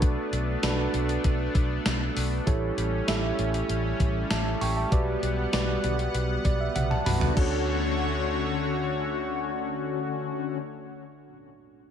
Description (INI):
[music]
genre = 1980s-style pop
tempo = 98 BPM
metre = 4/4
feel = straight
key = D major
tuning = A4 = 440 Hz
[part]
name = tine electric piano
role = accompaniment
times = 0.0-11.9 s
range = D4 to C#6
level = -32 LUFS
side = right 4 dB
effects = overdrive
[part]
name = lush unison pad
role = sustained chords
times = 0.0-10.6 s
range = D3 to F#5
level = -32 LUFS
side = left 1 dB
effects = chorus
[part]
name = vintage muted fingered electric bass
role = bass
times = 0.0-11.3 s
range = A1 to D2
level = -30 LUFS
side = equal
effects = none
[part]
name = gated 80s digital drum machine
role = drums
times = 0.0-7.5 s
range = crash cymbal, hi-hat, kick drum, snare drum, tambourine, toms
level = -27 LUFS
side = equal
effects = gated reverb, gated reverb snare
[part]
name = mellow synth brass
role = stabs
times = 5.8-10.6 s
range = D3 to F#4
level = -31 LUFS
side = left 6 dB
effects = chorus, tape echo
[sound]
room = light reverb, digital ambience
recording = none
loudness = -24 LUFS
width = side -8 dB against mid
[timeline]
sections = 0.0-7.4 A section; 7.4-9.8 B section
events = band accent 4.9-7.4; tine electric piano fill 6.1-7.4; drum fill 6.8-7.4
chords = 0.0 Bm7; 2.5 A7; 4.9 Gmaj7/B; 7.4 Dmaj7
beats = | 0.02 0.63 1.24 1.86 | 2.47 3.08 3.69 4.30 | 4.92 5.53 6.14 6.75 | 7.37 7.98 8.59 9.20